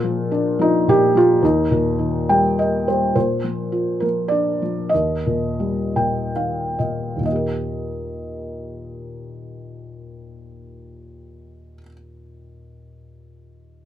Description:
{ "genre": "classical, lyrical solo piano", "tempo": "61-109 BPM", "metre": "3/4", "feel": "rubato", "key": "Eb major", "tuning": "A4 = 444 Hz", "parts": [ { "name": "felt-muted upright piano", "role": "solo", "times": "0.0-13.9 s", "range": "Eb2 to G5", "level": "-18 LUFS", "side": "equal", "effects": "none" } ], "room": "light reverb", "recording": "none", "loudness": "-17 LUFS", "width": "side -11 dB against mid", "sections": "0.0-3.2 A section; 3.2-7.3 B section; 7.3-12.9 C section", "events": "felt piano fill 2.0-3.2, 5.6-7.3; slowing down 3.2-7.3", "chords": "0.0 Bb; 1.4 Eb; 3.2 Bb; 4.9 Eb", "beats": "0.33 0.88 | 1.44 2.00 2.59 | 3.16 3.73 4.31 | 4.92 5.59 6.35 | 7.26 8.23 9.19 | 10.12 11.04 11.98" }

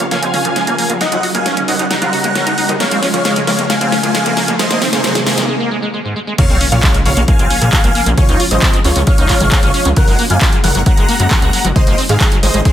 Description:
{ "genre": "uplifting trance", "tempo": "134 BPM", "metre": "4/4", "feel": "straight", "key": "Bb minor", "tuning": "A4 = 442 Hz", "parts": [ { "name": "big supersaw lead", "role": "melody", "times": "0.0-12.7 s", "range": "C4 to Bb5", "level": "-18 LUFS", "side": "equal", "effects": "phaser, sidechain pumping, dub echo" }, { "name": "analog string pad", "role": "sustained chords", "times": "0.0-12.7 s", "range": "C3 to Gb4", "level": "-22 LUFS", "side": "left 1 dB", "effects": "ensemble chorus, sidechain pumping" }, { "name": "liquid acid bass", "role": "arpeggios", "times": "0.0-12.7 s", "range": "Ab2 to Gb4", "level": "-21 LUFS", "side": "right 1 dB", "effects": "lush chorus, sidechain pumping, dub echo" }, { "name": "gritty driven synth bass", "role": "bass", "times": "0.0-12.6 s", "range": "Eb1 to Bb2", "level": "-17 LUFS", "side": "equal", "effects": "sidechain pumping, high-pass filter" }, { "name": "big-room dance drum kit", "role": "drums", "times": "0.0-12.7 s", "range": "crash cymbal, handclaps, hi-hat, snare drum, toms", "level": "-18 LUFS", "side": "equal", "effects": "high-pass filter on hats, studio reverb, high-pass filter on toms, high-pass filter on snare, high-pass filter on cymbals" }, { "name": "riser and impact", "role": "sound effects", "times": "0.0-8.2 s", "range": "none", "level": "-21 LUFS", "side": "equal", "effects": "none" }, { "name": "electronic kick drum", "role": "drums", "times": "6.4-12.7 s", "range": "none", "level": "-13 LUFS", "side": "equal", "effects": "studio reverb" } ], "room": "light reverb, digital ambience", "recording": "none", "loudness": "-11 LUFS", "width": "side -11 dB against mid", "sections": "0.0-6.4 A section; 6.4-12.7 B section", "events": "build-up 0.0-6.4; drum fill 0.0-5.5; riser 0.0-5.5; filter sweep on acid bass 0.0-6.4; break 5.5-6.4; drop 6.4-12.7; impact 6.4-8.2", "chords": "0.0 Bbm; 1.0 Ebm7; 2.8 Bbm; 4.6 Ab; 6.4 Bbm; 8.2 Db; 10.0 Gbadd9; 11.8 Ab", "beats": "0.12 0.56 | 1.01 1.46 1.91 2.35 | 2.80 3.25 3.70 4.15 | 4.59 5.04 5.49 5.94 | 6.38 6.83 7.28 7.73 | 8.18 8.62 9.07 9.52 | 9.97 10.41 10.86 11.31 | 11.76 12.21 12.65" }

